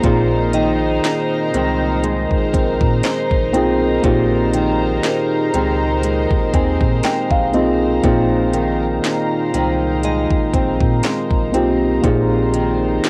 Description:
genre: contemporary R&B.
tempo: 60 BPM.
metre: 4/4.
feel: swing 54% on 16ths.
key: unclear.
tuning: A4 = 440 Hz.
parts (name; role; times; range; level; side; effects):
muted felt-like synth keys; accompaniment; 0.0-13.1 s; Bb3 to Ab5; -22 LUFS; equal; chorus, cassette tape.
warm studio string section; sustained chords; 0.0-13.1 s; Eb4 to Bb5; -25 LUFS; equal; cassette tape.
nylon-string guitar; arpeggios; 0.0-13.1 s; Bb2 to C4; -23 LUFS; equal; cassette tape, tape echo.
warm sub bass; bass; 0.0-13.0 s; Bb1 to Bb2; -25 LUFS; equal; none.
trap drum kit; drums; 0.0-13.1 s; hi-hat, kick drum, snare drum; -22 LUFS; equal; none.
glassy synth bell; texture; 0.5-13.1 s; Bb4 to Eb5; -31 LUFS; equal; chorus, cassette tape, tape echo.
room: moderate booth ambience, RT60 0.2 s.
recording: home recording on cassette.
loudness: -17 LUFS.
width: mono.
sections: 0.0-13.1 A section.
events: synth keys fill 6.0-8.0.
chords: 0.0 Bb9sus4.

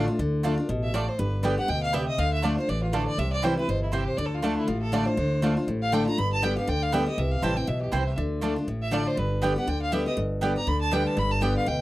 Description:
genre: bluegrass.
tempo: 240 BPM.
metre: 4/4.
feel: swing 56% on 8ths.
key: D dorian.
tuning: A4 = 443 Hz.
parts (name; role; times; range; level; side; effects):
picked steel-string acoustic guitar; accompaniment; 0.0-11.8 s; G2 to G4; -27 LUFS; left 2 dB; none.
mandolin; stabs; 0.0-11.5 s; A3 to A5; -30 LUFS; right 5 dB; none.
upright bass; bass; 0.0-11.8 s; G1 to D2; -29 LUFS; equal; none.
clear fiddle; melody; 0.8-11.8 s; D4 to B5; -30 LUFS; equal; none.
room: light reverb.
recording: dry, close 1970s-style studio recording.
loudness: -23 LUFS.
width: side -16 dB against mid.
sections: 0.2-11.8 A section.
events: none.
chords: 0.2 Dm; 1.2 G; 2.2 Dm; 3.2 C; 4.2 Dm; 6.2 G; 7.2 C; 8.2 Dm; 9.2 G.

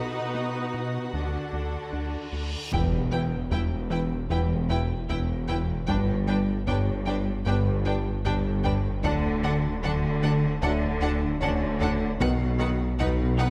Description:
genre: cinematic, hybrid orchestral and electronic film score.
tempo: 76 BPM.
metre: 4/4.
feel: straight.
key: E dorian.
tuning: A4 = 441 Hz.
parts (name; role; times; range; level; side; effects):
clear symphonic violin section; second line; 0.0-13.5 s; A4 to F#5; -41 LUFS; equal; none.
clear symphonic viola section; accompaniment; 0.0-13.5 s; D#3 to F#4; -38 LUFS; equal; none.
thumb-piano-like synth pluck; arpeggios; 0.0-13.5 s; D3 to B4; -39 LUFS; equal; none.
rubbery square bass; riff; 0.0-13.5 s; D2 to B3; -33 LUFS; equal; none.
warm studio cello section; bass; 0.0-13.5 s; E2 to D3; -35 LUFS; equal; none.
reverse cymbal and impact; sound effects; 2.2-5.9 s; none; -39 LUFS; equal; none.
felt-muted upright piano; texture; 0.0-13.5 s; B3 to A5; -42 LUFS; equal; none.
rich symphonic violin section; melody; 2.7-13.5 s; F#5 to G5; -38 LUFS; equal; none.
mellow French horn section; sustained chords; 2.7-12.5 s; D#3 to D4; -39 LUFS; equal; none.
clear symphonic double bass section; bass; 2.7-13.5 s; E1 to D2; -34 LUFS; equal; none.
dark tuba; bass; 2.7-13.5 s; E1 to D2; -35 LUFS; equal; none.
soft dub sub bass; bass; 2.7-13.5 s; D1 to B1; -36 LUFS; equal; none.
taiko ensemble; drums; 2.7-13.4 s; none; -38 LUFS; equal; none.
room: moderate scoring stage reverb, RT60 1.7 s.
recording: none.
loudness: -27 LUFS.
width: mono.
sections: 0.0-2.7 A section; 2.7-13.5 B section.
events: reverse cymbal 2.2-2.7; impact 2.7-5.9.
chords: 0.0 B; 1.1 D; 2.7 Em; 5.9 G; 9.0 D; 12.2 B.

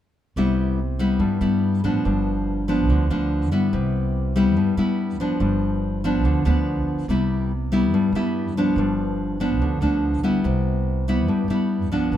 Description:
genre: bossa nova.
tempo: 143 BPM.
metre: 4/4.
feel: straight.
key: C major.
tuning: A4 = 438 Hz.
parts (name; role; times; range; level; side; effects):
nylon-string guitar; accompaniment; 0.4-12.2 s; G2 to E4; -20 LUFS; left 1 dB; none.
upright bass; bass; 0.4-12.2 s; G1 to G2; -25 LUFS; right 1 dB; none.
room: little or no reverb.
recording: minimal, uncompressed stereo recording.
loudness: -19 LUFS.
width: side -11 dB against mid.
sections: 0.4-12.2 A section.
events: none.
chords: 0.4 Cmaj7; 2.0 G7; 3.7 Cmaj7; 5.4 G7; 7.1 Cmaj7; 8.8 G7; 10.4 Cmaj7.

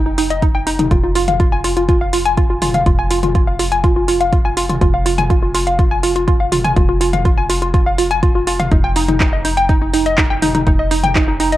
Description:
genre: melodic techno.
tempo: 123 BPM.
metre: 4/4.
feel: straight.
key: F minor.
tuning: A4 = 445 Hz.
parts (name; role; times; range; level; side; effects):
tight sequencer bass; bass; 0.0-11.6 s; F1; -21 LUFS; equal; sidechain pumping.
warbly dusty pluck; arpeggios; 0.1-11.6 s; Eb4 to Ab5; -16 LUFS; equal; chorus, sidechain pumping, analog delay.
deep house drum kit; drums; 0.2-11.6 s; handclaps, hi-hat, toms; -21 LUFS; left 1 dB; overdrive, cassette tape.
electronic kick drum; drums; 0.4-11.3 s; none; -15 LUFS; equal; cassette tape.
room: light reverb.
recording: home recording on cassette.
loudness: -12 LUFS.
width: side -15 dB against mid.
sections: 0.0-11.6 A section.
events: none.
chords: none.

